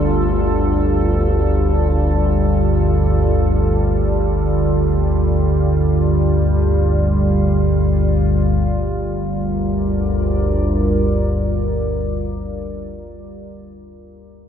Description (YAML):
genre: dark ambient drone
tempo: free time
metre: none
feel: none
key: G minor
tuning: A4 = 442 Hz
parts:
  - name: deep dark ambient pad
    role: sustained chords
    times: 0.0-12.7 s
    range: G3 to D5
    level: -20 LUFS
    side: right 1 dB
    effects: chorus, built-in reverb
  - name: analog drone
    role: drone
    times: 0.0-12.2 s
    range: G1 to D2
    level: -17 LUFS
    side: equal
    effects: lush chorus
room: wet cathedral reverb, RT60 5.6 s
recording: cassette tape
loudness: -15 LUFS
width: side -8 dB against mid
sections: 0.0-8.6 A section; 8.6-13.3 B section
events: none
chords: 0.0 Gsus2; 8.6 Gm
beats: free time